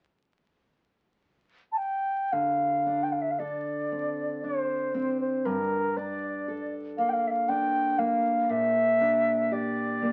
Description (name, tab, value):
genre	celtic folk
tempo	59 BPM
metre	3/4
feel	rubato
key	D minor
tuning	A4 = 440 Hz
part	wooden flute	melody	1.7-10.1 s	Bb4 to A5	-29 LUFS	equal	none
part	fingerpicked steel-string acoustic guitar	accompaniment	2.3-10.1 s	G2 to A4	-34 LUFS	equal	none
room	moderate small room reverb, RT60 0.5 s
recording	very old 78 rpm record, vinyl crackle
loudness	-28 LUFS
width	mono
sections	0.0-2.3 A section; 2.3-10.1 B section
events	none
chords	0.0 N.C.; 2.3 D5; 5.5 Gmadd9; 8.5 Bb6